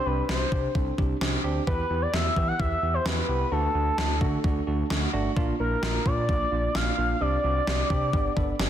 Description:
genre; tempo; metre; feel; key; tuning
synth-pop; 130 BPM; 4/4; straight; unclear; A4 = 440 Hz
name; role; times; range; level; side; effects
expressive portamento lead; melody; 0.0-8.7 s; A4 to F#5; -28 LUFS; left 1 dB; chorus, digital delay
tine electric piano; accompaniment; 0.1-8.7 s; A3 to B5; -31 LUFS; right 3 dB; none
smooth gliding synth bass; bass; 0.1-8.7 s; G1 to E3; -29 LUFS; equal; none
gated 80s digital drum machine; drums; 0.3-8.7 s; kick drum, snare drum; -28 LUFS; equal; gated reverb, gated reverb snare, overdrive
room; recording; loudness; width
moderate lush hall reverb, RT60 2.1 s; dense, heavily limited modern master; -23 LUFS; side -10 dB against mid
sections
0.0-8.7 A section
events
tine electric piano fill 4.4-5.4, 8.1-8.7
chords
0.0 Csus2; 1.7 Em; 3.5 D; 5.4 Bb; 7.2 Csus2; 8.1 G

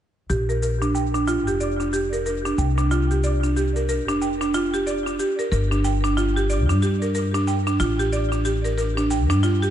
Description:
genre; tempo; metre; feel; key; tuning
organic downtempo; 92 BPM; 4/4; swing 60% on 16ths; unclear; A4 = 440 Hz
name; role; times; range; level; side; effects
buzzing marimba with medium hard mallets; arpeggios; 0.3-9.7 s; D4 to G5; -22 LUFS; right 2 dB; low-pass filter, analog delay
upright bass; bass; 0.3-9.7 s; F1 to G2; -23 LUFS; left 1 dB; none
cabasa; drums; 0.3-9.7 s; none; -38 LUFS; left 1 dB; tape echo
room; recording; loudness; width
light reverb, studio ambience; echo-heavy mix, nothing above 10.4 kHz; -20 LUFS; side -10 dB against mid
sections
0.3-9.7 A section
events
filter sweep on upright bass 0.3-9.7; filter sweep on marimba 0.3-9.7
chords
0.3 Bb; 5.5 G7(no3)

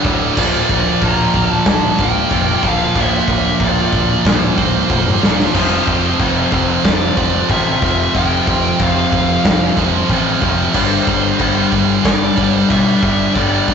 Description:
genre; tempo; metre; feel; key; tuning
heavy metal; 92 BPM; 4/4; straight; unclear; A4 = 440 Hz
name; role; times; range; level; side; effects
heavy high-gain guitar; riff; 0.0-13.7 s; D2 to Bb3; -19 LUFS; left 6 dB; distortion
scooped high-gain guitar; riff; 0.0-13.7 s; D2 to Bb3; -17 LUFS; right 7 dB; distortion
growling picked electric bass; bass; 0.0-13.7 s; D1 to B1; -21 LUFS; equal; overdrive
big rock drum kit; drums; 0.0-13.7 s; china cymbal, crash cymbal, kick drum, snare drum, toms; -18 LUFS; equal; none
dark smooth lead guitar; melody; 0.4-13.7 s; C5 to Bb5; -22 LUFS; left 4 dB; overdrive, digital delay
room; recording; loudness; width
moderate studio ambience, RT60 0.5 s; rough rehearsal-room recording, warm saturation, nothing above 7.7 kHz; -12 LUFS; side -6 dB against mid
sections
0.0-13.7 A section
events
half time 0.0-13.7; drum fill 4.9-5.6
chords
0.4 Bb/D; 5.6 F5; 10.8 G5

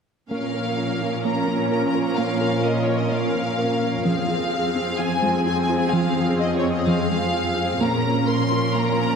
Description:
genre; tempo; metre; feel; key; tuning
cinematic; 128 BPM; 4/4; straight; Bb minor; A4 = 440 Hz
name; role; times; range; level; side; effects
warm symphonic violin section; melody; 0.3-9.2 s; Db5 to C6; -26 LUFS; left 1 dB; none
rich symphonic viola section; accompaniment; 0.3-9.2 s; C4 to Bb4; -26 LUFS; right 1 dB; none
sweeping resonant pad; sustained chords; 0.3-9.2 s; F3 to Bb4; -26 LUFS; left 1 dB; chorus
tight sequenced synth; arpeggios; 0.3-9.1 s; F3 to Bb4; -28 LUFS; right 1 dB; chorus, digital delay
warm symphonic cello section; bass; 0.3-9.2 s; F2 to Bb2; -26 LUFS; right 1 dB; none
room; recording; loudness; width
wet scoring stage reverb, RT60 2.0 s; heard from further back in the room; -19 LUFS; side -6 dB against mid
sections
0.3-9.2 A section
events
none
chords
0.3 Bbm; 4.1 Fm; 7.8 Bbm

